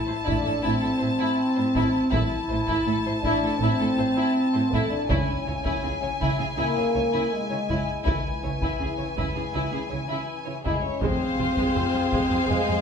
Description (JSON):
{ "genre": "cinematic, epic orchestral film score", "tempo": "81 BPM", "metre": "4/4", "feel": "straight", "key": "unclear", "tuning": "A4 = 439 Hz", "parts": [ { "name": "rich chamber violin section", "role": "melody", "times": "0.0-12.8 s", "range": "Ab4 to A5", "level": "-32 LUFS", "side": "left 4 dB", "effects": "none" }, { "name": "warm French horn section", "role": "sustained chords", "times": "0.0-12.8 s", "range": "Fb3 to E4", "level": "-26 LUFS", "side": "left 1 dB", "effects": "none" }, { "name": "rich symphonic violin section", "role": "second line", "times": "0.1-12.8 s", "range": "E4 to F5", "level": "-31 LUFS", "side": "left 3 dB", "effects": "none" }, { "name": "dark symphonic viola section", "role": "accompaniment", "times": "0.1-12.8 s", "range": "Ab3 to Ab4", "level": "-33 LUFS", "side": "right 2 dB", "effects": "none" }, { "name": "dark symphonic cello section", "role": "bass", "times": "0.1-12.8 s", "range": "F2 to Db3", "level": "-32 LUFS", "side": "right 4 dB", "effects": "none" }, { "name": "rich symphonic double bass section", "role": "bass", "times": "0.3-12.6 s", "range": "F1 to Db2", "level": "-32 LUFS", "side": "right 3 dB", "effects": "none" }, { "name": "taiko ensemble", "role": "drums", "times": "0.3-12.8 s", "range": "none", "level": "-32 LUFS", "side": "equal", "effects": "none" }, { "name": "rich symphonic string section", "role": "sustained chords", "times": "11.0-12.8 s", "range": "C4 to Ab5", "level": "-32 LUFS", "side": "equal", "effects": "none" } ], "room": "wet recital hall reverb, RT60 1.4 s", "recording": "recorded in a church or concert hall", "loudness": "-22 LUFS", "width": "side -7 dB against mid", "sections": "0.0-11.0 A section; 11.0-12.8 A section", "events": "none", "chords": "0.0 Am; 5.1 Dbm; 11.0 Fm", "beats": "0.64 1.38 | 2.12 2.87 3.61 4.35 | 5.09 5.83 6.57 7.31 | 8.05 8.79 9.54 10.27 | 11.01 11.75 12.49" }